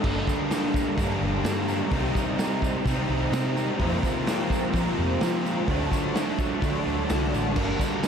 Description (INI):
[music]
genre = rock, shoegaze and dream pop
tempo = 128 BPM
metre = 4/4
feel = straight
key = G minor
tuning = A4 = 438 Hz
[part]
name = glassy FM pad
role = sustained chords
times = 0.0-8.1 s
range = Eb4 to Bb5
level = -34 LUFS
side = equal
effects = ensemble chorus, built-in reverb
[part]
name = fingerpicked plugged-in twelve-string acoustic guitar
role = arpeggios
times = 0.0, 7.6-8.1 s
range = G4 to Bb4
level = -37 LUFS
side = right 9 dB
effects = lush chorus, analog delay
[part]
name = cranked stack guitar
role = riff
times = 0.0-8.1 s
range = F2 to Eb4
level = -31 LUFS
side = right 1 dB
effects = overdrive, analog chorus
[part]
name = crunchy overdriven guitar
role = riff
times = 0.0-8.1 s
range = F2 to G4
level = -30 LUFS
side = left 9 dB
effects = lush chorus
[part]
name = overdriven semi-hollow guitar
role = riff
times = 0.0-8.1 s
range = F2 to Eb4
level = -30 LUFS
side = right 9 dB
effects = reverse reverb
[part]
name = vintage muted fingered electric bass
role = bass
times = 0.0-7.7 s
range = G1 to F3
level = -29 LUFS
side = equal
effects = none
[part]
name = raw garage drum kit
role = drums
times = 0.0-8.1 s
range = crash cymbal, hi-hat, kick drum, snare drum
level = -29 LUFS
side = equal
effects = none
[part]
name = tambourine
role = percussion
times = 0.1-8.1 s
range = none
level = -46 LUFS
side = right 10 dB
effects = none
[sound]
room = moderate plate reverb, RT60 1.4 s, small room reverb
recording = dreamy mix soaked in reverb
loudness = -23 LUFS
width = side -7 dB against mid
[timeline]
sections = 0.0-8.1 A section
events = none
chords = 0.0 Gm7; 1.9 Cm7; 3.8 Fsus4; 5.7 D; 7.6 Gm7